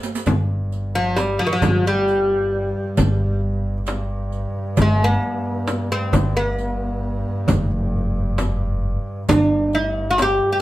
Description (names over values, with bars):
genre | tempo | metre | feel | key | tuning
Arabic maqam ensemble | 133 BPM (eighths) | 10/8 | straight | G maqam huzam | A4 = 440 Hz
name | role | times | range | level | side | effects
riq | percussion | 0.0-10.4 s | none | -31 LUFS | right 4 dB | none
upright bass | bass | 0.3-10.4 s | F#1-50c to G1 | -23 LUFS | equal | none
clear double bass | drone | 0.3-10.6 s | G2 | -28 LUFS | equal | none
darbuka | percussion | 0.3-10.4 s | none | -24 LUFS | right 2 dB | none
frame drum | percussion | 0.3-10.4 s | none | -24 LUFS | left 2 dB | none
oud | melody | 1.0-10.6 s | E3-50c to G4 | -20 LUFS | equal | none
room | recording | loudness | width
moderate studio reverb, RT60 0.6 s | heard from further back in the room, lossy compression artefacts | -18 LUFS | side -15 dB against mid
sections
0.3-10.6 A section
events
drum fill 0.0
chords
none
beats
| 0.27 0.72 1.17 1.62 2.07 2.52 2.97 3.42 3.87 4.32 | 4.78 5.23 5.68 6.13 6.58 7.03 7.48 7.93 8.38 8.84 | 9.29 9.74 10.19